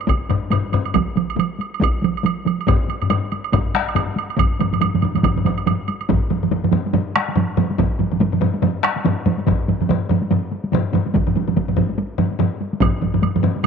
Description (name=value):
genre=japanese traditional, taiko drum ensemble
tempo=142 BPM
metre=4/4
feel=swing 60% on 16ths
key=none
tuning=none
part: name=woodblock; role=percussion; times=0.0-6.1, 12.8-13.7 s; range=none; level=-26 LUFS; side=right 10 dB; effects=none
part: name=taiko ensemble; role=percussion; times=0.1-13.7 s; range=none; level=-25 LUFS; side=left 2 dB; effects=none
part: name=taiko ensemble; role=percussion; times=0.1-12.9 s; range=none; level=-23 LUFS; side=equal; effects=none
part: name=taiko ensemble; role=percussion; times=0.3-13.7 s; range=none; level=-21 LUFS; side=left 6 dB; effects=none
part: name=solo taiko drums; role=percussion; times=1.0-13.7 s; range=none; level=-20 LUFS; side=right 11 dB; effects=none
room=light reverb, small room ambience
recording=1960s-style stereo with parts hard left and right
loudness=-17 LUFS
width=side -6 dB against mid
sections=0.0-6.1 A section; 6.1-13.7 B section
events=speeding up 0.0-13.7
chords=none